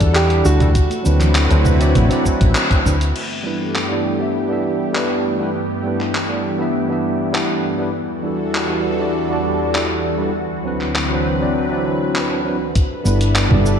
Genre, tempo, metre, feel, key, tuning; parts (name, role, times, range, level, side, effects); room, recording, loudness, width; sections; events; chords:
sunset chillout; 100 BPM; 4/4; straight; G major; A4 = 438 Hz
clear concert grand piano; melody; 0.0-2.5 s; F#4 to A4; -23 LUFS; right 3 dB; digital delay
barky tine electric piano; accompaniment; 0.0-13.8 s; F#3 to F#5; -21 LUFS; equal; auto-pan, low-pass filter, digital delay
lush unison pad; sustained chords; 0.0-13.8 s; D2 to F#5; -22 LUFS; equal; chorus, phaser
woody fretless electric bass; bass; 0.0-3.1, 13.1-13.8 s; G1 to E2; -15 LUFS; equal
dusty soul sampler-style drum kit; drums; 0.0-13.8 s; cabasa, congas, crash cymbal, handclaps, hi-hat; -22 LUFS; equal
electronic kick drum; drums; 0.0-3.0, 12.8-12.9 s; -17 LUFS; equal
congas; percussion; 0.9-1.3 s; -27 LUFS; right 1 dB
moderate lush hall reverb, RT60 1.9 s, digital ambience; dark, warm production; -15 LUFS; side -7 dB against mid
0.0-3.2 A section; 3.2-12.8 B section; 12.8-13.8 C section
band accent 2.6-2.9
0.0 Em11; 0.8 D13; 3.2 G6; 8.0 Em11; 10.4 D13; 12.8 G6